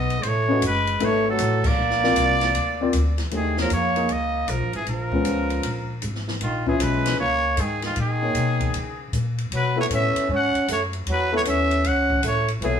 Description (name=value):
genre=modal jazz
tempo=155 BPM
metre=4/4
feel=swing 66% on 8ths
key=Eb phrygian from 3.3 s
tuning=A4 = 441 Hz
part: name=trumpet with straight mute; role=melody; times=0.0-12.8 s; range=F4 to F#5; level=-24 LUFS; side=right 1 dB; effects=none
part: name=clear trombone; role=second line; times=0.0-12.8 s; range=Eb3 to C#4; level=-26 LUFS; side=right 2 dB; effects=none
part: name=upright bass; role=bass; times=0.0-12.8 s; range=F#1 to Db3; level=-26 LUFS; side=left 1 dB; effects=none
part: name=open jazz drum kit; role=drums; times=0.1-12.7 s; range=crash cymbal, hi-hat, kick drum, ride cymbal, snare drum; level=-31 LUFS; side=left 1 dB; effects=none
part: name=warm grand piano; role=accompaniment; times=0.5-12.8 s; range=Ab3 to Fb5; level=-25 LUFS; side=left 3 dB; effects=none
room=wet studio reverb, RT60 0.8 s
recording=band playing live in one room, small room ambience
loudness=-20 LUFS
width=side -8 dB against mid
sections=0.0-3.3 A section; 3.3-12.8 B section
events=band accent 1.6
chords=0.0 F#madd9; 1.8 A#add9; 3.3 Eb9sus4; 9.5 B9sus4